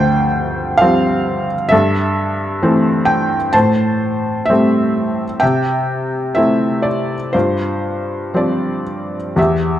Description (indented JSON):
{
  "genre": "classical, lyrical solo piano",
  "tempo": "58-67 BPM",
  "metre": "4/4",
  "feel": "rubato",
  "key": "C major",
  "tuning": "A4 = 439 Hz",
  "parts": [
    { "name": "felt-muted upright piano", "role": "solo", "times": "0.0-9.8 s", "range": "D2 to A5", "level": "-14 LUFS", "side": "equal", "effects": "none" }
  ],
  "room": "light reverb",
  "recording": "dark, warm production",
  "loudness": "-14 LUFS",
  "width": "side -12 dB against mid",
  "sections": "0.0-9.4 A section",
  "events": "none",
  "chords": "0.0 G7sus4; 1.7 C6/G; 3.5 Am7; 5.4 C6; 7.3 G7sus4"
}